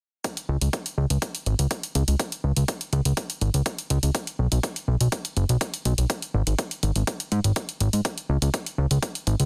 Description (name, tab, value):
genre	melodic techno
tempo	123 BPM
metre	4/4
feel	straight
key	unclear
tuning	A4 = 440 Hz
part	electronic hi-hat	drums	0.2-9.5 s	none	-33 LUFS	equal	overdrive, studio reverb
part	electronic kick drum	drums	0.2-9.1 s	none	-31 LUFS	equal	overdrive, high-pass filter on kick, studio reverb
part	fat analog bass	bass	0.5-9.5 s	F#1 to G#2	-24 LUFS	equal	tube saturation, sidechain pumping
room	little or no reverb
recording	dense, heavily limited modern master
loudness	-25 LUFS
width	mono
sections	0.2-9.5 A section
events	filter sweep on analog synth bass 0.2-9.5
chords	none